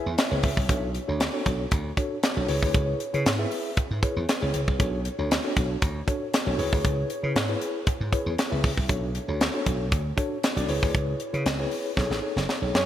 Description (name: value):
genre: early-eighties boogie funk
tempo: 117 BPM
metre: 4/4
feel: straight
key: B dorian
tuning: A4 = 442 Hz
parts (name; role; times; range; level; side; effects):
- mellow tine electric piano; accompaniment; 0.0-12.8 s; D4 to G#5; -29 LUFS; left 1 dB; medium stereo tremolo
- slap bass; bass; 0.1-12.8 s; F#1 to C#3; -29 LUFS; equal; none
- tight funk drum kit; drums; 0.2-12.9 s; hi-hat, kick drum, snare drum; -26 LUFS; equal; gated reverb
- fat analog lead; melody; 12.8-12.9 s; C#5; -24 LUFS; right 2 dB; none
room: moderate lush hall reverb, RT60 2.6 s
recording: bright 1980s-style digital production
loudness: -23 LUFS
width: side -11 dB against mid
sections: 0.0-12.9 A section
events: tine electric piano fill 0.0-0.7; drum fill 12.0-12.9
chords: 0.0 C#m7; 0.7 Bm9; 2.5 C#m7; 4.8 Bm9; 6.6 C#m7; 8.9 Bm9; 10.7 C#m7; 12.0 B13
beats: 0.18 | 0.69 1.21 1.72 2.23 | 2.74 3.26 3.77 4.28 | 4.79 5.31 5.82 6.33 | 6.85 7.36 7.87 8.38 | 8.90 9.41 9.92 10.44 | 10.95 11.46 11.97 12.49